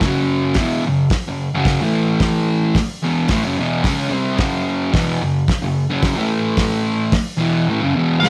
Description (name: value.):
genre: garage rock duo or trio.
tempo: 110 BPM.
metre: 4/4.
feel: straight.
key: unclear.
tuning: A4 = 440 Hz.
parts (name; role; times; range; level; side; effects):
fuzz guitar; riff; 0.0-8.3 s; E2 to C#4; -19 LUFS; equal; distortion, cassette tape.
cloth-damped thuddy drum kit; drums; 0.0-8.3 s; hi-hat, kick drum, snare drum; -23 LUFS; equal; cassette tape.
octave-fuzz lead guitar; melody; 8.2-8.3 s; F#5; -18 LUFS; equal; distortion, cassette tape.
room: moderate small room ambience, RT60 0.5 s.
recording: home recording on cassette.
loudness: -18 LUFS.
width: mono.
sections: 0.0-8.3 A section.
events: none.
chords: 0.0 F#5; 1.8 A5; 3.0 F#5; 6.2 A5; 7.4 F#5.